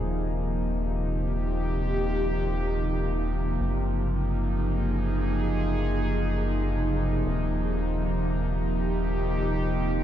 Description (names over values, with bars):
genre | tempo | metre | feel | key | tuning
IDM | free time | none | none | unclear | A4 = 441 Hz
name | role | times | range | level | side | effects
warbly tape-like pad | sustained chords | 0.0-10.0 s | C3 to Ab4 | -28 LUFS | right 1 dB | chorus, built-in reverb
rubbery square bass | bass | 0.0-10.0 s | Eb1 to Gb1 | -28 LUFS | equal | none
room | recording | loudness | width
light reverb | nothing above 10.9 kHz | -25 LUFS | side -10 dB against mid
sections
0.0-10.0 A section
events
none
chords
0.0 Eb; 3.6 Gbmaj7; 7.3 Eb